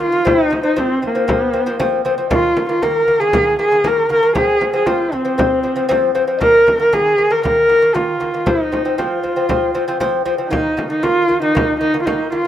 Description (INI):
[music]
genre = mongolian traditional, Mongolian folk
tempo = 117 BPM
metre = 4/4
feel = straight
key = F yu mode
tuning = A4 = 438 Hz
[part]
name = warm horsehead fiddle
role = melody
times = 0.0-12.5 s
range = Bb3 to Bb4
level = -15 LUFS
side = equal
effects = none
[part]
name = lute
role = arpeggios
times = 0.0-12.5 s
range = Eb3 to C4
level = -20 LUFS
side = left 1 dB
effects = none
[part]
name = frame drum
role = percussion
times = 0.0-12.4 s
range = none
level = -22 LUFS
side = left 1 dB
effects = none
[sound]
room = moderate plate reverb, RT60 3.2 s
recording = rough home demo mix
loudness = -13 LUFS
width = side -11 dB against mid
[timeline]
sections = 0.0-12.5 A section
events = none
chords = 0.3 F5; 2.3 Eb5; 4.4 F5; 6.4 Eb5; 8.5 F5; 10.5 Eb5